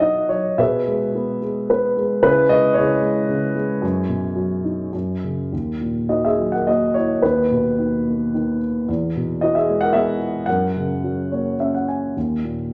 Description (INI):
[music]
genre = classical, lyrical solo piano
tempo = 100-117 BPM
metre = 3/4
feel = rubato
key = B major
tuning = A4 = 440 Hz
[part]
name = dark concert grand piano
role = solo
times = 0.0-12.7 s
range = D#2 to G#5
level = -20 LUFS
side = equal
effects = none
[sound]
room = wet recital hall reverb, RT60 1.6 s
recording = none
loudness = -20 LUFS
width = mono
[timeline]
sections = 0.0-5.5 A section; 5.5-12.7 B section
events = grand piano fill 1.4-2.2, 11.0-12.2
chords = 0.0 B; 0.6 E/B; 2.2 C#m; 3.8 B/F#; 4.9 F#5; 5.5 D#m; 7.2 B/D#; 8.9 Eadd9; 10.5 F#; 12.2 D#5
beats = 0.00 | 0.58 1.15 1.69 | 2.23 2.76 3.30 | 3.83 4.37 4.93 | 5.52 6.10 6.67 | 7.24 7.79 8.34 | 8.89 9.42 9.94 | 10.47 11.03 11.59 | 12.16 12.73